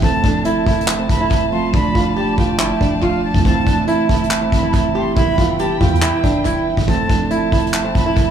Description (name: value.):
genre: hip hop, trap.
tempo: 140 BPM.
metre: 4/4.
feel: half-time.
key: unclear.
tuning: A4 = 440 Hz.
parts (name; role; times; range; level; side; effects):
flamenco guitar; melody; 0.0-8.3 s; C4 to G4; -20 LUFS; right 2 dB; tape echo.
jazz flute; second line; 0.0-8.3 s; F5 to C6; -25 LUFS; left 2 dB; tape echo.
mellow tine electric piano; accompaniment; 0.0-8.3 s; E3 to A4; -22 LUFS; right 5 dB; medium stereo tremolo, tape echo.
dark chamber string section; sustained chords; 0.0-8.3 s; F3 to A5; -26 LUFS; left 1 dB; none.
long sustained 808-style bass; bass; 0.0-8.3 s; E1 to E2; -23 LUFS; equal; none.
vintage brush drum kit; drums; 0.0-8.3 s; handclaps, hi-hat, kick drum; -18 LUFS; equal; none.
room: light reverb, small room ambience.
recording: echo-heavy mix, small room reverb.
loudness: -14 LUFS.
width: side -8 dB against mid.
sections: 0.0-8.3 A section.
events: hi-hats muted 1.7-3.5.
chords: 0.0 F/E; 1.7 Dm/E; 3.5 Am/E; 5.2 Em; 6.9 F/E.